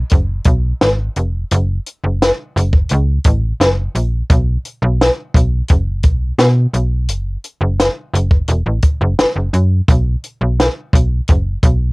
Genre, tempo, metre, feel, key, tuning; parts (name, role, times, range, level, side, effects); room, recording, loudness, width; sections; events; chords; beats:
indie pop, bedroom pop; 86 BPM; 4/4; straight; A4 = 440 Hz
slap-like FM bass; bass; 0.0-11.9 s; E1 to B2; -15 LUFS; equal
compact cocktail drum kit; drums; 0.1-11.8 s; hi-hat, kick drum, snare drum; -13 LUFS; equal
little or no reverb; home recording on cassette; -13 LUFS; side -26 dB against mid
0.0-11.9 A section
0.11 0.81 | 1.51 2.21 2.90 3.60 | 4.30 5.00 5.70 6.39 | 7.09 7.79 8.49 9.19 | 9.88 10.58 11.28